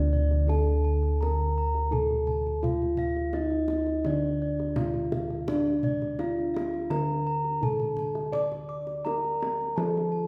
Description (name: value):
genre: Javanese gamelan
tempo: 84 BPM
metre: 4/4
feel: straight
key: D pelog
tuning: A4 = 440 Hz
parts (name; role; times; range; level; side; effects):
- gamelan-type bronze metallophone; melody; 0.0-10.3 s; D4 to D5; -33 LUFS; equal; none
- gamelan-type bronze metallophone; arpeggios; 0.0-10.3 s; D5 to D6; -36 LUFS; equal; slapback echo
- gamelan-type bossed gongs; bass; 0.0-10.3 s; D2 to D5; -31 LUFS; equal; none
- kendang; percussion; 0.1-10.1 s; none; -38 LUFS; equal; none
room: wet recital hall reverb, RT60 1.4 s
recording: heard from further back in the room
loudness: -28 LUFS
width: mono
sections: 0.0-10.3 A section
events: none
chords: none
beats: 0.49 1.20 1.92 | 2.63 3.35 4.06 4.78 | 5.49 6.20 6.92 7.63 | 8.35 9.06 9.78